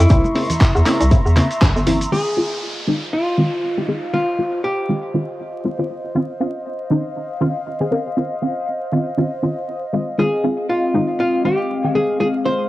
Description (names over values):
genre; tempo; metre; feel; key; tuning
deep house; 119 BPM; 4/4; swing 57% on 16ths; F minor; A4 = 440 Hz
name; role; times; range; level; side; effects
archtop guitar, miked and amplified; melody; 0.0-5.9, 10.2-12.7 s; E4 to C5; -21 LUFS; equal; cassette tape, analog delay
warbly tape-like pad; sustained chords; 0.0-12.7 s; Ab3 to Db6; -26 LUFS; left 1 dB; chorus, built-in reverb, sidechain pumping
hollow knocking FM bass; bass; 0.0-2.1 s; G1 to E2; -16 LUFS; equal; tube saturation, sidechain pumping
dusty soul sampler-style drum kit; drums; 0.0-2.2 s; crash cymbal, handclaps, hi-hat, shaker; -25 LUFS; equal; low-pass filter on hats, studio reverb, cassette tape, low-pass filter on perc, low-pass filter on snare, low-pass filter on cymbals
filtered dub chord stab; stabs; 0.1-12.7 s; Db3 to Bb4; -20 LUFS; equal; phaser, sidechain pumping, analog delay
electronic kick drum; drums; 0.1-1.7 s; none; -14 LUFS; equal; studio reverb, cassette tape
vintage brush drum kit; drums; 0.1-2.0 s; hi-hat, shaker, snare drum; -40 LUFS; right 1 dB; none
congas; percussion; 0.2-2.0 s; none; -27 LUFS; right 1 dB; none
downlifter; sound effects; 2.1-6.2 s; none; -32 LUFS; equal; none
room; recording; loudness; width
moderate small room reverb, RT60 0.6 s; home recording on cassette, vinyl crackle; -17 LUFS; side -16 dB against mid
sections
0.0-2.1 A section; 2.1-12.7 B section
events
band accent 1.6; filter sweep on ambient pad 2.1-12.7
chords
0.1 C7b9; 2.1 Fm7; 5.9 Dbmaj9; 9.9 Fm7